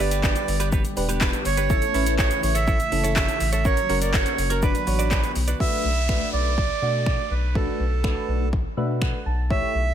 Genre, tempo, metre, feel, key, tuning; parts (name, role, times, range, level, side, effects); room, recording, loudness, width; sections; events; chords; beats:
dance-pop; 123 BPM; 4/4; straight; B minor; A4 = 440 Hz
accordion; melody; 0.0-9.9 s; A4 to E5; -26 LUFS; right 6 dB
soft electric-piano-like synth keys; accompaniment; 0.0-9.8 s; A3 to A5; -30 LUFS; equal; chorus, phaser, sidechain pumping
sweeping resonant pad; sustained chords; 0.0-5.6 s; C#3 to G4; -33 LUFS; left 2 dB; chorus, sidechain pumping
direct-recorded clean electric guitar; riff; 0.0-5.6 s; B3 to D5; -32 LUFS; right 7 dB; lush chorus
round analog bass; bass; 0.0-9.9 s; E1 to B2; -25 LUFS; left 1 dB; sidechain pumping
deep house drum kit; drums; 0.1-9.6 s; finger snaps, handclaps, hi-hat, kick drum, shaker; -24 LUFS; left 1 dB; overdrive
downlifter; sound effects; 5.6-9.5 s; -34 LUFS; equal
little or no reverb; -20 LUFS; side -9 dB against mid
0.0-5.6 A section; 5.6-9.9 B section
synth keys fill 8.5-9.5
0.0 G; 1.7 A; 3.7 F#; 4.6 Bm; 5.6 Bm7
0.24 0.72 1.21 | 1.70 2.19 2.67 3.16 | 3.65 4.14 4.63 5.11 | 5.60 6.09 6.58 7.07 | 7.55 8.04 8.53 9.02 | 9.50